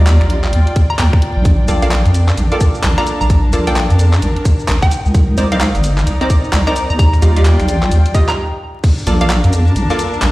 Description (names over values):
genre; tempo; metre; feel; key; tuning
UK garage, two-step garage; 130 BPM; 4/4; swing 61% on 16ths; Bb major; A4 = 441 Hz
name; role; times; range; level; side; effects
hollow square pluck; melody; 0.0-9.4 s; F5 to Bb5; -23 LUFS; equal; chorus, tape echo
punchy chord stab; stabs; 0.0-10.3 s; G3 to Eb5; -21 LUFS; right 1 dB; chorus, tape echo
deep soft wobble bass; bass; 0.0-10.3 s; G1 to F2; -12 LUFS; equal; chorus
rich symphonic string section; texture; 0.0-10.3 s; D4 to Bb5; -23 LUFS; left 1 dB; sidechain pumping
garage drum kit; drums; 0.1-10.3 s; crash cymbal, finger snaps, handclaps, hi-hat, shaker; -22 LUFS; equal; overdrive
electronic kick drum; drums; 0.8-8.9 s; none; -11 LUFS; equal; overdrive
room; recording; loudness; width
light reverb; played on a big sound system in a bare room, large studio reverb, vinyl crackle; -11 LUFS; side -18 dB against mid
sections
0.0-8.8 A section; 8.8-10.3 B section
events
stop 8.4-8.8; drop 8.8-10.3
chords
0.0 Ebmaj9; 1.5 Bbmaj7; 4.9 Cm9; 7.0 Ebmaj9; 8.8 Bbmaj7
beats
0.07 0.53 0.99 | 1.45 1.91 2.38 2.84 | 3.30 3.76 4.22 4.68 | 5.14 5.61 6.07 6.53 | 6.99 7.45 7.91 8.38 | 8.84 9.30 9.76 10.22